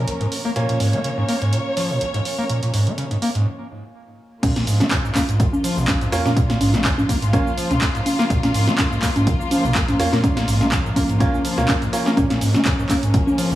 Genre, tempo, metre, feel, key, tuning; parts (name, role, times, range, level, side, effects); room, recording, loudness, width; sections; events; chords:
acid house; 124 BPM; 4/4; swing 54% on 16ths; Bb minor; A4 = 440 Hz
rich symphonic string section; sustained chords; 0.0-13.6 s; Db3 to Db5; -26 LUFS; left 1 dB; sidechain pumping
overdriven acid bass; riff; 0.0-13.6 s; Bb1 to Bb3; -22 LUFS; equal; tube saturation, lush chorus, cassette tape, analog delay
bright concert grand piano; stabs; 0.0-12.2 s; Bb3 to F4; -27 LUFS; right 2 dB; analog delay
punchy analog drum machine; drums; 0.1-13.6 s; congas, crash cymbal, handclaps, hi-hat, shaker, snare drum; -22 LUFS; equal; overdrive
saturated sub bass; bass; 4.4-13.6 s; Ab1 to Bb2; -26 LUFS; equal; sidechain pumping
electronic kick drum; drums; 4.4-13.2 s; -22 LUFS; equal
light reverb, digital ambience; small room ambience; -17 LUFS; side -14 dB against mid
0.0-4.4 A section; 4.4-13.6 B section
break 3.5-4.4; drop 4.4-13.6
0.0 Bbm